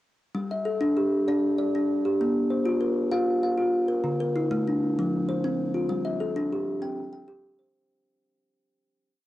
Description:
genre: southern african traditional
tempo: 130 BPM (dotted quarters)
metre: 12/8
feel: straight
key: G equiheptatonic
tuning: A4 = 440 Hz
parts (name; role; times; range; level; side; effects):
- kalimba; solo; 0.3-7.9 s; D3 to G5; -24 LUFS; equal; none
room: light reverb, small room ambience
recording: home recording on cassette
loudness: -23 LUFS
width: side -15 dB against mid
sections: 0.3-7.8 A section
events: fade-out 5.9-7.8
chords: 0.3 G5; 2.2 Bb5; 4.0 D5; 5.0 F5; 5.9 G5; 6.8 C5

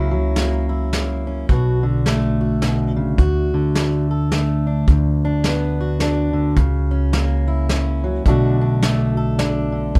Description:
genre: acoustic folk duo or small band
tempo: 106 BPM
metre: 3/4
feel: swing 60% on 8ths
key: D major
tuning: A4 = 440 Hz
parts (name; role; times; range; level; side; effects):
- fingerpicked plugged-in steel-string acoustic guitar; accompaniment; 0.0-10.0 s; D2 to A4; -22 LUFS; equal; none
- upright bass; bass; 0.0-10.0 s; G1 to D2; -23 LUFS; equal; none
- soft brush drum kit; drums; 0.4-10.0 s; hi-hat, kick drum, snare drum; -22 LUFS; equal; none
room: little or no reverb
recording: none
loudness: -19 LUFS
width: mono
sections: 0.0-4.9 A section; 4.9-10.0 B section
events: none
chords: 0.0 F#7/C#; 1.5 Bm7; 3.2 D; 4.9 D6; 6.6 F#7/C#; 8.3 Bm7

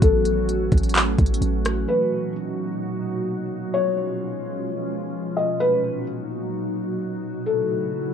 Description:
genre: hip hop, atmospheric cloud-rap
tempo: 129 BPM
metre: 4/4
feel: half-time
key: B lydian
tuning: A4 = 440 Hz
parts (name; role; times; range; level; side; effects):
- felt-muted upright piano; melody; 0.0-8.1 s; A4 to D#5; -24 LUFS; left 3 dB; low-pass filter, analog delay, plate reverb
- glassy FM pad; sustained chords; 0.0-8.1 s; A#2 to F#4; -26 LUFS; right 1 dB; ensemble chorus, built-in reverb, sidechain pumping
- warm 808-style bass; bass; 0.0-1.9 s; A1; -23 LUFS; equal; none
- smooth R&B drum kit; drums; 0.0-1.8 s; handclaps, hi-hat, kick drum, rim click; -19 LUFS; equal; vintage 12-bit sampler grit
room: wet studio reverb, RT60 0.6 s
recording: rough home demo mix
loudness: -21 LUFS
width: side -8 dB against mid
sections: 0.0-1.9 A section; 1.9-8.1 B section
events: none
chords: 0.0 A6; 1.9 Bmaj7; 3.7 C#7; 5.6 Bmaj7; 7.5 A6

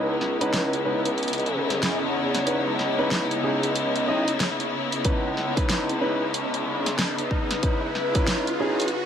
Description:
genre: glitch hop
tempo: 93 BPM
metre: 4/4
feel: swing 62% on 16ths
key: C# minor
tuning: A4 = 438 Hz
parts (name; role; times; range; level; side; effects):
- rich studio string section; sustained chords; 0.0-8.9 s; C#3 to E4; -29 LUFS; left 2 dB; sidechain pumping
- dark grand piano; stabs; 0.0-8.8 s; C#4 to D#5; -28 LUFS; equal; sidechain pumping, low-pass filter, ping-pong delay
- gritty driven synth bass; bass; 0.0-8.9 s; B1 to F#2; -30 LUFS; equal; high-pass filter
- riser and reverse cymbal; sound effects; 2.6-9.1 s; none; -34 LUFS; right 1 dB; none
- ethereal airy pad; texture; 0.0-8.9 s; C#4 to D#5; -31 LUFS; left 1 dB; ensemble chorus, built-in reverb, sidechain pumping
- pop drum kit; drums; 0.2-8.9 s; hi-hat, snare drum; -27 LUFS; equal; none
- electronic kick drum; drums; 5.0-8.3 s; none; -25 LUFS; equal; none
room: moderate studio reverb, RT60 0.5 s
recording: vinyl crackle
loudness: -22 LUFS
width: side -8 dB against mid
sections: 0.0-9.1 A section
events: build-up 0.0-9.1; riser 2.6-9.1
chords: 0.0 C#m9

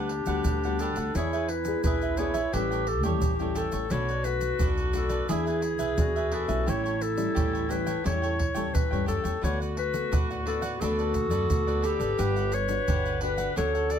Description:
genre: samba and choro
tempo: 87 BPM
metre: 4/4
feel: straight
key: unclear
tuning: A4 = 440 Hz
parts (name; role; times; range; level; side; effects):
- clear clarinet; melody; 0.0-14.0 s; F#4 to D5; -31 LUFS; left 6 dB; none
- growling clarinet; second line; 0.0-14.0 s; D4 to B4; -32 LUFS; right 4 dB; none
- cavaquinho; accompaniment; 0.0-14.0 s; D4 to G5; -34 LUFS; right 6 dB; none
- nylon-string guitar; accompaniment; 0.0-14.0 s; F#2 to B4; -35 LUFS; left 6 dB; none
- upright bass; bass; 0.0-14.0 s; G1 to G2; -32 LUFS; equal; none
- pandeiro, egg shaker and surdo; percussion; 0.1-14.0 s; none; -30 LUFS; right 1 dB; none
room: light reverb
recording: none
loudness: -25 LUFS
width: side -8 dB against mid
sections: 0.0-14.0 A section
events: none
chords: 0.0 Gmaj7/D; 1.1 E7; 2.5 A7; 3.9 Bm7; 5.3 E7; 6.7 A7; 9.4 D6; 10.8 Bm7/D; 12.2 Gmaj7

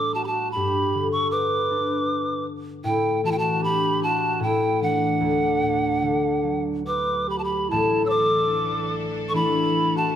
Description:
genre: celtic folk, Celtic slow air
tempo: 68-81 BPM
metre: 3/4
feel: rubato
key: unclear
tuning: A4 = 440 Hz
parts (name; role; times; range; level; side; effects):
- polished pan flute; melody; 0.0-10.2 s; F#5 to E6; -24 LUFS; equal; none
- baroque flute; second line; 0.0-10.2 s; D4 to C#5; -27 LUFS; right 6 dB; none
- concert harp; accompaniment; 0.0-10.2 s; A1 to E4; -25 LUFS; left 4 dB; none
- clear symphonic string section; sustained chords; 7.7-10.1 s; E3 to A4; -31 LUFS; equal; none
room: wet recital hall reverb, RT60 1.4 s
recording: none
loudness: -20 LUFS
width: side -10 dB against mid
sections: 0.0-7.7 A section; 7.7-10.2 B section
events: none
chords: 0.0 A7sus4; 0.6 G; 2.8 Asus4; 4.4 A5; 5.2 D; 7.7 Asus4

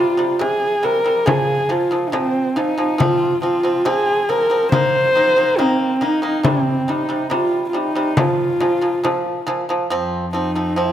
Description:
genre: mongolian traditional, Mongolian folk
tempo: 70 BPM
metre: 4/4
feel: straight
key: F minor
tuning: A4 = 441 Hz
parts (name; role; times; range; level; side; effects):
- dark horsehead fiddle; melody; 0.0-10.9 s; C4 to C5; -17 LUFS; equal; none
- pipa; arpeggios; 0.0-10.9 s; Bb2 to C4; -21 LUFS; right 1 dB; none
- frame drum; percussion; 0.4-9.6 s; none; -22 LUFS; left 2 dB; none
- rich cello; drone; 9.9-10.9 s; F2; -25 LUFS; equal; none
room: moderate concert hall reverb, RT60 2.0 s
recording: close, detailed microphones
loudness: -16 LUFS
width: side -11 dB against mid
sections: 0.0-9.9 A section; 9.9-10.9 B section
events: none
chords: 0.0 C5; 1.3 Bb5; 3.0 F5; 4.7 Eb5; 6.4 C5; 8.2 Bb5; 9.9 F5

